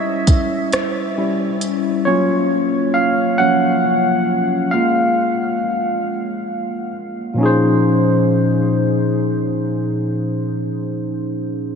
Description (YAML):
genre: slow six-eight R&B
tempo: 45 BPM (dotted quarters)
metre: 6/8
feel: straight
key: Bb minor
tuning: A4 = 440 Hz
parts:
  - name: barky tine electric piano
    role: accompaniment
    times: 0.0-11.8 s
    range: Bb2 to Gb5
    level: -16 LUFS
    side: equal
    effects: overdrive, lush chorus
  - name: smooth R&B drum kit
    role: drums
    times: 0.3-1.8 s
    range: hi-hat, kick drum, rim click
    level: -19 LUFS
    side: equal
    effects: vintage 12-bit sampler grit
room: wet huge ambient reverb, RT60 8.2 s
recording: dreamy mix soaked in reverb, nothing above 10.4 kHz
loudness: -15 LUFS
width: side -6 dB against mid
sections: 0.0-7.4 A section; 7.4-10.1 B section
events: tine electric piano solo 0.0-7.4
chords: 0.0 C#dim/G; 2.1 Gbmaj7; 4.7 Fmadd11/Ab; 7.4 Bbm11